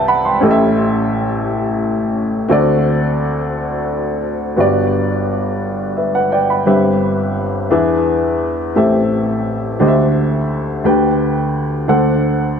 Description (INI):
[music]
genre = gospel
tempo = 58 BPM (dotted quarters)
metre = 6/8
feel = straight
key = G major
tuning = A4 = 440 Hz
[part]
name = warm upright piano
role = solo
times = 0.0-12.6 s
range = G1 to C6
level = -14 LUFS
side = equal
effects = analog delay
[sound]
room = light reverb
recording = echo-heavy mix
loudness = -14 LUFS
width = side -7 dB against mid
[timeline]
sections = 0.0-4.6 A section; 4.6-12.6 B section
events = none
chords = 0.4 A7; 2.5 D7; 4.6 Gmaj7; 6.7 Cmaj7/G; 7.7 E7; 8.8 Am7; 9.8 D9sus4; 10.8 G/D; 11.9 D7